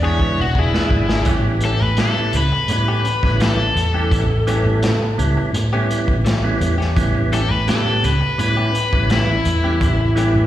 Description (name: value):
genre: straight-eighth soul blues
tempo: 84 BPM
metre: 4/4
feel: straight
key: A mixolydian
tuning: A4 = 440 Hz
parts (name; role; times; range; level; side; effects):
- cranked stack guitar; melody; 0.0-10.5 s; E4 to C#5; -21 LUFS; left 3 dB; overdrive, slapback echo
- percussive tonewheel organ; accompaniment; 0.0-10.5 s; G3 to G#4; -24 LUFS; right 3 dB; overdrive, chorus vibrato, fast rotary speaker, slapback echo
- direct-recorded clean electric guitar; stabs; 0.0-10.4 s; E3 to G#4; -28 LUFS; left 4 dB; slapback echo, digital delay
- vintage muted fingered electric bass; bass; 0.0-10.5 s; E1 to A2; -19 LUFS; equal; none
- crunchy breakbeat drum kit; drums; 0.2-10.3 s; hi-hat, kick drum, snare drum; -22 LUFS; equal; none
room: light reverb, small room ambience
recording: live gig heard through the venue's PA, recital hall reverb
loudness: -15 LUFS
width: side -13 dB against mid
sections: 0.0-1.3 A section; 1.3-10.5 B section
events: drum fill 0.0-1.3; overdriven electric guitar solo 1.3-10.5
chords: 0.0 E7; 1.3 A7